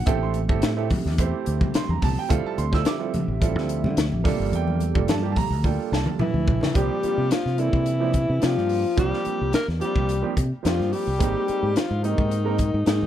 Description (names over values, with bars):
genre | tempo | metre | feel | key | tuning
electric jazz fusion | 108 BPM | 4/4 | straight | C mixolydian | A4 = 440 Hz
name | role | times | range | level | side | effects
warm grand piano | accompaniment | 0.0-13.1 s | F3 to E6 | -28 LUFS | right 10 dB | none
dark analog pad | sustained chords | 0.0-6.7 s | D3 to E5 | -34 LUFS | right 2 dB | chorus
fingered electric bass | bass | 0.0-13.1 s | F1 to D3 | -25 LUFS | equal | none
crisp fusion drum kit | drums | 0.1-13.0 s | hi-hat, kick drum, snare drum, toms | -24 LUFS | left 1 dB | none
congas | percussion | 0.9-6.7 s | none | -29 LUFS | left 1 dB | none
mellow alto saxophone | melody | 6.2-13.1 s | Eb4 to Bb4 | -26 LUFS | left 1 dB | slapback echo
breathy tenor saxophone | second line | 6.2-13.1 s | Eb3 to Bb3 | -31 LUFS | left 11 dB | none
room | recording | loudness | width
studio reverb | none | -20 LUFS | side -11 dB against mid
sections
0.0-6.8 A section; 6.8-13.1 B section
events
drum fill 5.6-6.8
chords
0.1 Am7; 2.3 Dm11; 4.2 Gm9; 6.8 C7sus4; 11.2 Abmaj9